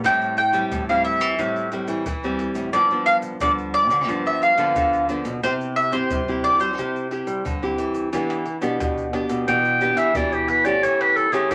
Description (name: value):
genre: samba and choro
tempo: 89 BPM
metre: 4/4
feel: straight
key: unclear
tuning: A4 = 435 Hz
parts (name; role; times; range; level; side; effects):
- nylon-string guitar; accompaniment; 0.0-11.5 s; G2 to G4; -28 LUFS; equal; none
- nylon-string guitar; bass; 0.0-11.5 s; G2 to G3; -30 LUFS; equal; none
- egg shaker, surdo, pandeiro and tamborim; percussion; 0.0-11.5 s; none; -36 LUFS; equal; none
- mandolin; melody; 0.1-7.6 s; C5 to G5; -22 LUFS; equal; none
- bright clarinet; second line; 9.5-11.5 s; G4 to G5; -21 LUFS; equal; none
room: wet small room reverb, RT60 0.6 s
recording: none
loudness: -21 LUFS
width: mono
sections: 0.0-8.1 A section; 8.1-11.5 B section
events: clarinet solo 8.1-11.5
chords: 0.0 Am7; 2.7 G7; 5.4 C; 8.1 Em7; 10.8 A7/E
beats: | 0.04 0.72 1.39 2.06 | 2.74 3.41 4.08 4.76 | 5.43 6.10 6.78 7.45 | 8.13 8.80 9.48 10.15 | 10.83 11.51